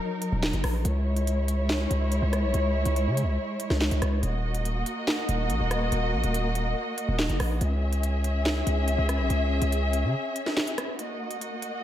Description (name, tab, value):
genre	hip hop, drill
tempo	142 BPM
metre	4/4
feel	half-time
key	Eb phrygian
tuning	A4 = 436 Hz
part	muted studio string section	sustained chords	0.0-11.8 s	Gb3 to Fb5	-29 LUFS	equal	none
part	drill drum kit	drums	0.2-11.7 s	handclaps, hi-hat, rim click, snare drum	-31 LUFS	equal	none
part	distorted 808-style bass	bass	0.3-10.1 s	Eb1 to Db3	-26 LUFS	equal	distortion
room	moderate lush hall reverb, RT60 1.9 s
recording	dreamy mix soaked in reverb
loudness	-24 LUFS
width	side -11 dB against mid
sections	0.0-11.0 A section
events	break 10.1-11.0, 11.0-11.8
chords	0.0 Ebm; 0.8 Dbm; 4.2 Ebm; 7.6 Dbm; 11.0 Ebm